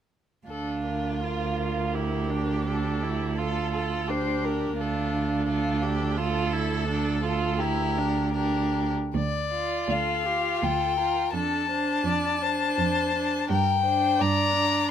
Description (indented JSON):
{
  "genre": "classical, slow romantic movement for string quartet",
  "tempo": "73-88 BPM",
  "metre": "3/4",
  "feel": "rubato",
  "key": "D minor",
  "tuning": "A4 = 438 Hz",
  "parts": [
    { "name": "rich violin", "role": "melody", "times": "0.5-14.9 s", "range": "G4 to Bb5", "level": "-28 LUFS", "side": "left 7 dB", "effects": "none" },
    { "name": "clear violin", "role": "second line", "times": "0.5-14.9 s", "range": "F4 to D5", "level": "-33 LUFS", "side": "equal", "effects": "none" },
    { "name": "rich viola", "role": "accompaniment", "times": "0.5-14.9 s", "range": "D4 to F4", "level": "-29 LUFS", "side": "right 3 dB", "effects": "none" },
    { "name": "rich cello", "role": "bass", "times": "0.5-14.8 s", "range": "D2 to G2", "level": "-29 LUFS", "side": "right 3 dB", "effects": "none" }
  ],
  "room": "moderate studio reverb, RT60 0.8 s",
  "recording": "none",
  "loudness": "-24 LUFS",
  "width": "side -9 dB against mid",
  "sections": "0.5-9.1 A section; 9.1-14.9 B section",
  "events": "none",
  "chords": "0.5 Dm; 11.3 Dm/F; 13.5 Gm"
}